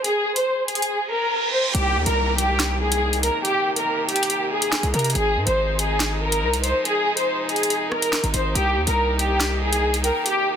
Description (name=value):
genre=hip hop, drill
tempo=141 BPM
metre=4/4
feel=half-time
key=C minor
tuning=A4 = 439 Hz
part: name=warm studio violin section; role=melody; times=0.0-10.6 s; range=G4 to C5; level=-21 LUFS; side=equal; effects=low-pass filter, digital delay
part: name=drill drum kit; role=drums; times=0.0-10.4 s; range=handclaps, hi-hat, rim click, snare drum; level=-24 LUFS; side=equal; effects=none
part: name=reverse cymbal and downlifter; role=sound effects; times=1.0-5.2 s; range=none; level=-29 LUFS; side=right 2 dB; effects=none
part: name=muted French horn section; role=sustained chords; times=1.7-10.6 s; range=C3 to Eb4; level=-31 LUFS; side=right 1 dB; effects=none
part: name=distorted 808-style bass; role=bass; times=1.7-10.1 s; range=Ab1 to C3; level=-24 LUFS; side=equal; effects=distortion
part: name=breathy mellow silver concert flute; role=second line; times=10.0-10.2 s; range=G5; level=-31 LUFS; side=left 7 dB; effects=none
room=light reverb, studio reverb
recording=dense, heavily limited modern master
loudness=-19 LUFS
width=side -8 dB against mid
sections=0.0-1.7 A section; 1.7-10.6 B section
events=reverse cymbal 1.0-1.7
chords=0.0 Ab; 1.7 Cm7; 5.2 Ab6; 8.6 Cm7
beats=| 0.04 0.47 0.90 1.32 | 1.75 2.17 2.60 3.02 | 3.45 3.87 4.30 4.72 | 5.15 5.58 6.00 6.43 | 6.85 7.28 7.70 8.13 | 8.55 8.98 9.40 9.83 | 10.26